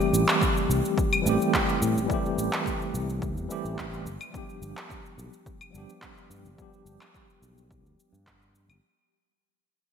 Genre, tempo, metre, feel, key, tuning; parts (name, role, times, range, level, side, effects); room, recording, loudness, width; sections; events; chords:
sunset chillout; 107 BPM; 4/4; straight; A4 = 441 Hz
tine electric piano; accompaniment; 0.0-8.8 s; E3 to G4; -28 LUFS; moving between left 4 dB and right 3 dB; medium stereo tremolo, auto-pan, digital delay
electronic shaker, handclaps and claves; drums; 0.0-8.8 s; -29 LUFS; equal; overdrive, gated reverb
sustaining fretless electric bass; bass; 0.1-8.8 s; G1 to A2; -29 LUFS; equal
electronic kick drum; drums; 0.4-8.4 s; -31 LUFS; equal; overdrive
moderate lush hall reverb, RT60 2.1 s; bright 1980s-style digital production; -24 LUFS; side -7 dB against mid
0.0-8.8 A section
fade-out 0.0-8.8
0.0 Am7; 4.1 G7